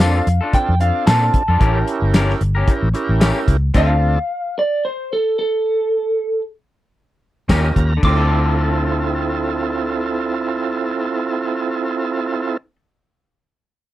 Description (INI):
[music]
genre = straight-eighth soul blues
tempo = 112 BPM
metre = 4/4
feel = swing 55% on 16ths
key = D minor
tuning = A4 = 440 Hz
[part]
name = electric guitar through a small old amp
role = melody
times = 0.0-12.6 s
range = A4 to D6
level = -19 LUFS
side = right 1 dB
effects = none
[part]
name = tonewheel organ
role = accompaniment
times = 0.0-4.2, 7.5-12.6 s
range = C4 to Bb5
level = -21 LUFS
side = right 4 dB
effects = slow rotary speaker, overdrive
[part]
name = electric guitar through a small old amp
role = stabs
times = 0.0-3.9, 7.5-12.8 s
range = D3 to Bb4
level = -25 LUFS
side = left 4 dB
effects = none
[part]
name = vintage muted fingered electric bass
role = bass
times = 0.0-4.2, 7.5-12.6 s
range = G1 to Bb2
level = -17 LUFS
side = equal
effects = none
[part]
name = warm soul drum kit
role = drums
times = 0.0-3.9, 7.5-8.2 s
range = crash cymbal, hi-hat, kick drum, snare drum, tambourine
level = -17 LUFS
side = equal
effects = none
[sound]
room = little or no reverb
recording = dry, close 1970s-style studio recording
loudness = -16 LUFS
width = side -14 dB against mid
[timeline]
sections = 0.0-8.0 A section; 8.0-12.3 B section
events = stop 3.7-7.5; tonewheel organ fill 7.2-8.0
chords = 0.0 Bbmaj7; 1.6 A7b9; 3.7 Dm7; 7.5 Eb7; 8.0 Dm7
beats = 0.00 0.54 1.07 | 1.61 2.14 2.68 3.21 | 3.75 4.28 4.82 5.36 | 5.89 6.43 6.96 7.50 | 8.03 8.57 9.10 9.64 | 10.18 10.71 11.25 11.78